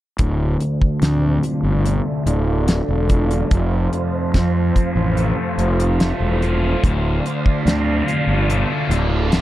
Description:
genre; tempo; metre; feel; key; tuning
psychedelic rock; 72 BPM; 4/4; straight; D minor; A4 = 440 Hz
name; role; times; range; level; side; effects
soft string machine; sustained chords; 0.2-9.4 s; C5 to C6; -28 LUFS; right 4 dB; phaser, ensemble chorus, low-pass filter
thick fuzz guitar; riff; 0.2-9.4 s; D2 to F4; -21 LUFS; left 1 dB; distortion, phaser, low-pass filter
fuzz fingered electric bass; bass; 0.2-9.4 s; D1 to F2; -19 LUFS; equal; overdrive
damped 70s drum kit; drums; 0.2-9.4 s; hi-hat, kick drum, snare drum; -18 LUFS; equal; none
room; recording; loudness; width
little or no reverb; dry, close 1970s-style studio recording; -16 LUFS; side -14 dB against mid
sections
0.2-9.4 A section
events
filter sweep 0.2-9.4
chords
0.2 Dm7; 3.5 F; 6.8 Dm7

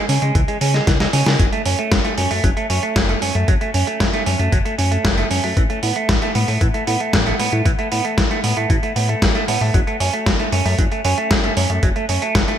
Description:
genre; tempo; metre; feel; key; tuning
italo disco; 115 BPM; 4/4; straight; F# minor; A4 = 439 Hz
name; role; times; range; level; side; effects
semi-hollow electric guitar; arpeggios; 0.0-12.6 s; E3 to C#4; -21 LUFS; right 3 dB; wide subtle chorus, ping-pong delay
chorused synth bass; bass; 0.1-12.4 s; F#1 to C#3; -21 LUFS; left 1 dB; none
dusty soul sampler-style drum kit; drums; 0.1-12.6 s; hi-hat, snare drum; -21 LUFS; equal; overdrive, gated reverb
electronic kick drum; drums; 0.4-12.5 s; none; -19 LUFS; left 1 dB; overdrive
room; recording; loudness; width
moderate lush hall reverb, RT60 1.9 s; bright 1980s-style digital production; -15 LUFS; side -10 dB against mid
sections
0.0-12.6 A section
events
drum fill 0.9-1.4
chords
0.0 C#5; 1.4 F#m; 5.6 Asus2; 9.7 F#m

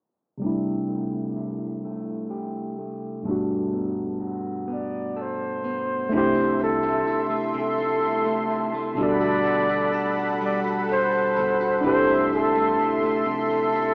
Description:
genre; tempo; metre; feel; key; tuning
R&B; 42 BPM (dotted quarters); 6/8; straight; unclear; A4 = 441 Hz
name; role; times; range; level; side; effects
electric guitar at the edge of break-up; second line; 0.4-13.9 s; C3 to A4; -33 LUFS; equal; slapback echo
barky tine electric piano; accompaniment; 0.4-13.9 s; G2 to A4; -30 LUFS; equal; none
mellow flugelhorn; melody; 4.7-13.9 s; A4 to D5; -27 LUFS; equal; none
warm analog pad; sustained chords; 6.1-13.9 s; A4 to C6; -29 LUFS; equal; chorus
rubbery square bass; bass; 6.1-12.9 s; G1 to C2; -41 LUFS; equal; none
room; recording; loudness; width
wet plate reverb, RT60 3.3 s; rough home demo mix, low-pass filter, small speaker sound; -24 LUFS; mono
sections
0.4-6.1 A section; 6.1-13.9 B section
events
filter sweep 0.4-6.1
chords
0.4 C6; 3.3 Gmaj9; 6.1 C6; 9.0 Gmaj9; 11.8 C6

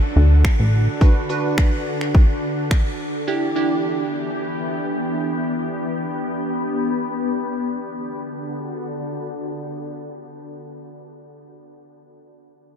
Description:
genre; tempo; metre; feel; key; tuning
dance-pop; 106 BPM; 4/4; straight; D major; A4 = 439 Hz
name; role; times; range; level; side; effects
glassy FM pad; sustained chords; 0.0-10.8 s; D3 to A4; -25 LUFS; left 1 dB; ensemble chorus, built-in reverb, sidechain pumping, low-pass filter
plucky analog bass; bass; 0.2-0.9 s; A1 to D2; -13 LUFS; equal; sidechain pumping
house drum kit; drums; 0.4-2.9 s; finger snaps, kick drum; -18 LUFS; equal; none
glassy wavetable pluck; accompaniment; 1.0-4.1 s; D4 to B4; -27 LUFS; right 2 dB; chorus, sidechain pumping, low-pass filter
room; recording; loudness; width
moderate huge ambient reverb, RT60 7.8 s; dreamy mix soaked in reverb; -19 LUFS; side -8 dB against mid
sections
0.0-7.8 A section; 7.8-10.1 B section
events
filter sweep 0.0-7.8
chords
0.0 D; 3.3 Em7; 5.5 G; 7.8 D

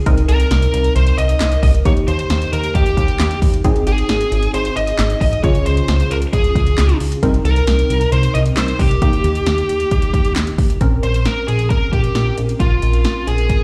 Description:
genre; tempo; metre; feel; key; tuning
synth-pop; 134 BPM; 4/4; straight; unclear; A4 = 440 Hz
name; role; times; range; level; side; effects
funky polysynth comp; accompaniment; 0.0-13.6 s; Bb3 to Bb4; -25 LUFS; equal; chorus
chorused synth bass; bass; 0.1-13.5 s; Ab1 to Eb2; -19 LUFS; equal; none
deep house drum kit; drums; 0.1-13.6 s; handclaps, hi-hat, kick drum, snare drum; -20 LUFS; equal; overdrive
smooth overdriven lead guitar; melody; 0.3-13.6 s; F4 to Eb5; -24 LUFS; equal; tape echo
room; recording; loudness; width
little or no reverb; played on a big sound system in a bare room, large studio reverb; -16 LUFS; mono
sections
0.0-10.8 A section; 10.8-13.6 B section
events
none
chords
0.1 Cm7; 1.9 Eb; 3.6 Ab; 5.4 Db; 7.2 Cm7; 9.0 Eb; 10.8 Bbmadd9

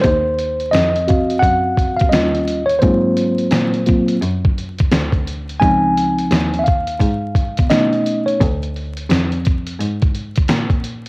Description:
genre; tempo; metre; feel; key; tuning
hip hop, jazz-hop; 86 BPM; 4/4; swing 62% on 16ths; Eb dorian; A4 = 439 Hz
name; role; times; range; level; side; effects
tine electric piano; accompaniment; 0.0-8.4 s; F3 to Ab5; -16 LUFS; equal; medium stereo tremolo, cassette tape
warm cello; bass; 0.0-11.1 s; Db2 to Cb3; -21 LUFS; equal; none
dusty soul sampler-style drum kit; drums; 0.0-11.1 s; hi-hat, kick drum, snare drum; -18 LUFS; equal; vintage 12-bit sampler grit, cassette tape
room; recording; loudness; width
light reverb; home recording on cassette, vinyl crackle; -14 LUFS; side -28 dB against mid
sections
0.0-11.1 A section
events
tine electric piano solo 0.0-11.1; break 8.4-11.1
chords
0.0 Ebm69; 2.1 Eb7; 2.8 Ab13; 5.6 Dbmaj9; 7.7 B9; 8.4 Ddim; 10.5 N.C.

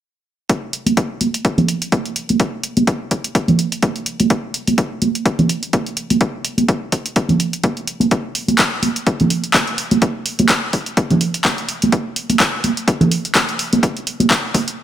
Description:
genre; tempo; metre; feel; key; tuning
house; 126 BPM; 4/4; swing 56% on 16ths; none; none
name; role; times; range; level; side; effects
electronic kick drum; drums; 0.5-14.7 s; none; -19 LUFS; left 1 dB; overdrive, high-pass filter on kick, high-pass filter on room
punchy analog drum machine; drums; 0.5-14.8 s; handclaps, hi-hat; -19 LUFS; equal; overdrive, sidechain pumping on hats
maracas and congas; percussion; 0.5-14.8 s; none; -18 LUFS; right 2 dB; sidechain pumping on perc, low-pass filter on perc
room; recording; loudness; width
light reverb, digital ambience; none; -15 LUFS; side -11 dB against mid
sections
0.5-14.8 A section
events
filter sweep on drum 0.5-14.8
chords
none

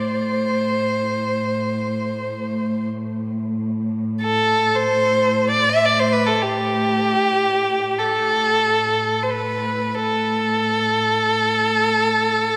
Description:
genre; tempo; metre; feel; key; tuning
caucasian folk, Caucasian lament; free time; none; none; A minor; A4 = 440 Hz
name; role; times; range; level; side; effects
warm violin; melody; 0.0-12.6 s; G4 to E5; -20 LUFS; equal; none
dark studio cello section; drone; 0.0-12.6 s; A2; -27 LUFS; equal; none
room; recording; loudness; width
wet church reverb, RT60 3.6 s; recorded in a church or concert hall; -20 LUFS; mono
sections
0.0-12.6 A section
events
slowing down 5.5-12.6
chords
none

